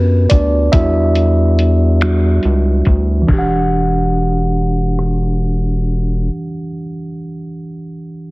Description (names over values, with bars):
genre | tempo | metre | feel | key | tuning
slow six-eight R&B | 47 BPM (dotted quarters) | 6/8 | straight | E minor | A4 = 436 Hz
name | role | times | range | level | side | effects
mellow tine electric piano | accompaniment | 0.0-8.3 s | E3 to F#5 | -17 LUFS | right 1 dB | none
round analog bass | bass | 0.0-6.3 s | E1 to F#2 | -14 LUFS | equal | none
dusty soul sampler-style drum kit | drums | 0.3-5.2 s | crash cymbal, finger snaps, hi-hat, kick drum, rim click | -16 LUFS | equal | none
room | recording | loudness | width
digital ambience | heavily compressed radio sound, low-pass filter | -12 LUFS | side -22 dB against mid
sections
0.0-3.3 A section; 3.3-5.8 B section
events
tine electric piano solo 0.0-3.3; filter sweep 0.0-3.3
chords
0.0 Em9